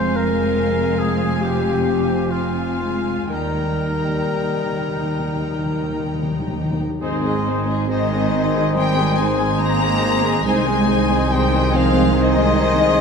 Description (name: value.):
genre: classical, slow romantic movement for symphony orchestra.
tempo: 58-73 BPM.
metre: 4/4.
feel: rubato.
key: Ab major.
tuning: A4 = 439 Hz.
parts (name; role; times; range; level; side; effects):
rich chamber violin section; melody; 0.0-13.0 s; Eb5 to Bb5; -25 LUFS; left 5 dB; none.
mellow oboe; second line; 0.0-13.0 s; F4 to C5; -29 LUFS; equal; none.
rich chamber violin section; second line; 0.0-13.0 s; Ab4 to G5; -29 LUFS; left 4 dB; none.
warm clarinet; second line; 0.0-13.0 s; Eb4 to C5; -27 LUFS; left 2 dB; none.
rich studio viola section; accompaniment; 0.0-13.0 s; Ab3 to Eb4; -26 LUFS; right 1 dB; none.
dark French horn section; sustained chords; 0.0-13.0 s; G3 to C5; -26 LUFS; left 6 dB; none.
rich chamber cello section; bass; 0.0-13.0 s; Eb2 to Bb3; -26 LUFS; right 4 dB; none.
warm chamber double bass section; bass; 0.0-13.0 s; F1 to Eb2; -25 LUFS; right 3 dB; none.
timpani; percussion; 3.3-7.0 s; Eb3; -28 LUFS; left 2 dB; none.
mellow hollow concert flute; second line; 7.0-13.0 s; C6; -28 LUFS; left 3 dB; none.
mellow trombone section; sustained chords; 7.0-13.0 s; Eb3 to Ab3; -26 LUFS; right 1 dB; none.
mellow tuba; bass; 7.0-13.0 s; Ab1 to C2; -24 LUFS; right 5 dB; none.
room: wet concert hall reverb, RT60 2.2 s.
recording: dark, warm production.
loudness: -17 LUFS.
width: side -6 dB against mid.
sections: 0.0-7.0 A section; 7.0-13.0 B section.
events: timpani fill 3.3-7.0.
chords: 0.0 Fm; 3.3 Eb; 7.0 Ab; 10.5 Ab/C.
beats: 0.58 1.44 2.32 | 3.31 4.27 5.19 6.11 | 7.02 7.90 8.76 9.60 | 10.45 11.31 12.16 12.98.